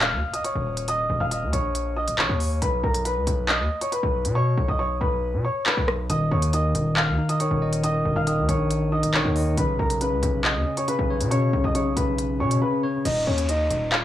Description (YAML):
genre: hip hop, drill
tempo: 138 BPM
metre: 4/4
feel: half-time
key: unclear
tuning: A4 = 436 Hz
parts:
  - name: dark baby grand piano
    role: melody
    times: 0.0-14.0 s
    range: Db4 to F6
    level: -26 LUFS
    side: left 1 dB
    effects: low-pass filter, cassette tape, tape echo
  - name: distorted 808-style bass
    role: bass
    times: 0.0-14.0 s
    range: Db1 to B2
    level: -25 LUFS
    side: equal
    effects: distortion
  - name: drill drum kit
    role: drums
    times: 0.0-14.0 s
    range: crash cymbal, handclaps, hi-hat, rim click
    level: -26 LUFS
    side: equal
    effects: cassette tape
  - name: impact and downlifter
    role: sound effects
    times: 0.0-0.9, 13.1-14.0 s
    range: none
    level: -38 LUFS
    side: equal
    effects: none
  - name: bell-like tine electric piano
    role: accompaniment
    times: 6.1-13.1 s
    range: C#3 to Eb5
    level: -24 LUFS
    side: equal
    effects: medium stereo tremolo, low-pass filter, cassette tape
room: little or no reverb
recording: home recording on cassette, small room ambience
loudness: -21 LUFS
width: side -12 dB against mid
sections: 0.0-13.1 A section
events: impact 0.0-0.9; hi-hats muted 4.4-6.1; drums muted 12.6-13.1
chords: 0.0 Eb5; 2.6 Bsus2; 6.1 Eb5; 9.6 Bsus2; 13.1 Eb5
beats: 0.01 0.45 | 0.88 1.31 1.75 2.18 | 2.62 3.05 3.49 3.92 | 4.36 4.79 5.23 5.66 | 6.10 6.53 6.97 7.40 | 7.84 8.27 8.71 9.14 | 9.57 10.01 10.45 10.88 | 11.31 11.75 12.18 12.62 | 13.05 13.49 13.92